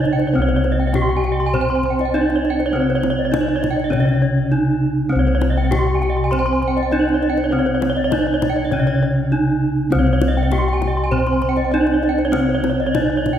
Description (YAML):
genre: Balinese gamelan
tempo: 100 BPM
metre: 4/4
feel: straight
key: C pelog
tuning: A4 = 439 Hz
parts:
  - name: gamelan-type bronze metallophone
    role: melody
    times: 0.0-13.4 s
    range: C4 to C5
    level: -20 LUFS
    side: right 1 dB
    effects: none
  - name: gamelan-type bronze metallophone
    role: accompaniment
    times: 0.0-13.4 s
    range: C3 to C4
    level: -24 LUFS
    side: right 3 dB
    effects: none
  - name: gamelan-type bronze metallophone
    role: arpeggios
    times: 0.0-13.3 s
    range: C5 to C6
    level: -25 LUFS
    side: left 4 dB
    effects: none
  - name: gamelan-type bronze metallophone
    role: arpeggios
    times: 0.0-13.4 s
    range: C5 to C6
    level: -25 LUFS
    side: right 4 dB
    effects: none
  - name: gamelan-type bossed gongs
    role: bass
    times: 0.0-13.4 s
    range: C2 to Db4+20c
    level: -21 LUFS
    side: left 2 dB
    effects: none
  - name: kendang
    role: percussion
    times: 0.1-13.4 s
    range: none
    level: -28 LUFS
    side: left 4 dB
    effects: none
room: wet scoring stage reverb, RT60 1.8 s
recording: recorded in a church or concert hall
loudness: -15 LUFS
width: side -10 dB against mid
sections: 0.0-13.4 A section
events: none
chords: none